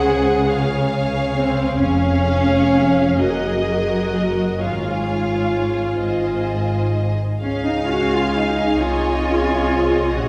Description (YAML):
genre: classical, slow romantic movement for string orchestra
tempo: 43 BPM (dotted quarters)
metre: 6/8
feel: uneven beats, rubato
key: Db major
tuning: A4 = 441 Hz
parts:
  - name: rich chamber violin section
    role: melody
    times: 0.0-10.3 s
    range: Db5 to Gb5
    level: -30 LUFS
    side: equal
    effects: none
  - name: rich studio violin section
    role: second line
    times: 0.0-10.3 s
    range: Ab4 to Ab5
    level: -28 LUFS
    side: equal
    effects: none
  - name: rich chamber viola section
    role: accompaniment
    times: 0.0-10.3 s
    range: C4 to Ab4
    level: -23 LUFS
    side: equal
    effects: none
  - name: rich chamber double bass section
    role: bass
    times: 0.0-10.3 s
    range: F1 to Db2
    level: -26 LUFS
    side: equal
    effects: none
  - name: warm chamber cello section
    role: bass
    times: 0.0-10.3 s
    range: F2 to Gb4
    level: -25 LUFS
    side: equal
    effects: none
room: wet scoring stage reverb, RT60 1.6 s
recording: heard from further back in the room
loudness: -19 LUFS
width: mono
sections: 0.0-7.4 A section; 7.4-10.3 B section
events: none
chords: 0.0 Ab7/Db; 0.5 Db; 1.8 Db/F; 3.2 Ebm/Gb; 4.6 Db/Ab; 7.4 Db